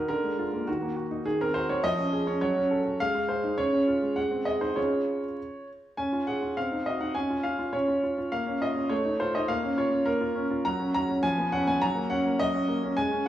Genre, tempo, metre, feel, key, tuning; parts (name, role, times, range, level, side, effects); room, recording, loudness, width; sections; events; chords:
classical-period piano sonatina; 103 BPM; 2/4; straight; Db major; A4 = 440 Hz
clear baby grand piano; solo; 0.0-13.3 s; Db3 to Bb5; -25 LUFS; equal
wet recital hall reverb, RT60 1.5 s; vinyl crackle, small room ambience; -25 LUFS; side -12 dB against mid
0.0-6.0 A section; 6.0-13.3 B section
0.1 A#7/D; 0.7 D#m; 1.3 Ebm6; 1.8 Db/F; 2.4 Gbm; 3.0 Ab; 3.6 Db; 4.2 Ab7; 4.8 Db; 6.6 Cdim; 7.1 Db; 8.3 Bbm; 8.9 F7/A; 9.5 Bbm; 10.7 Gb; 11.2 Db7/F; 11.8 Gb6